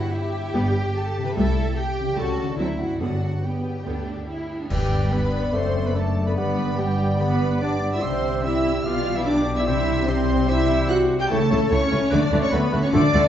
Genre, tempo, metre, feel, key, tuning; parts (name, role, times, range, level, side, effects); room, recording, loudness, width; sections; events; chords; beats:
classical, dramatic, fast romantic movement for symphony orchestra; 146 BPM; 4/4; straight; G major; A4 = 441 Hz
warm symphonic violin section; melody; 0.0-13.3 s; E5 to G6; -34 LUFS; left 1 dB
warm studio violin section; second line; 0.0-13.3 s; E4 to G5; -31 LUFS; equal
concert harp; arpeggios; 0.0-13.3 s; F#2 to D5; -29 LUFS; left 4 dB
dark studio double bass section; bass; 0.0-13.2 s; F#1 to D2; -27 LUFS; equal
rich symphonic cello section; bass; 0.0-13.2 s; F#2 to A4; -28 LUFS; right 1 dB
timpani; percussion; 0.0-0.3, 3.0-3.6 s; G2; -32 LUFS; equal
warm symphonic viola section; accompaniment; 0.5-13.3 s; D3 to G4; -27 LUFS; right 1 dB
cymbal swell, clash cymbals and concert bass drum; percussion; 1.4-5.5 s; -32 LUFS; equal
clear clarinet; second line; 4.7-13.2 s; E4 to B4; -33 LUFS; equal
clear oboe; second line; 4.7-13.2 s; A4 to E5; -34 LUFS; equal
flute section; second line; 4.7-13.3 s; G4 to G5; -31 LUFS; equal
mellow bassoon; accompaniment; 4.7-13.2 s; G3 to B3; -31 LUFS; right 1 dB
mellow French horn section; sustained chords; 4.7-13.3 s; G3 to G4; -27 LUFS; left 1 dB
wet stone room reverb, RT60 1.1 s; heard from further back in the room, nothing above 7.8 kHz; -20 LUFS; side -10 dB against mid
0.0-4.7 A section; 4.7-13.3 B section
band accent 4.7-5.1
0.0 Em/G; 1.4 Am7/C; 2.2 A7/C#; 2.6 D9; 3.0 G; 5.5 D/F#; 6.4 G; 8.0 C; 8.8 G/B; 9.7 C; 11.3 A/C#; 12.1 D6
0.12 0.53 0.94 | 1.35 1.76 2.16 2.58 | 3.00 3.42 3.86 4.29 | 4.71 5.13 5.54 5.95 | 6.37 6.78 7.19 7.61 | 8.03 8.44 8.85 9.26 | 9.67 10.08 10.49 10.90 | 11.30 11.71 12.12 12.53 | 12.94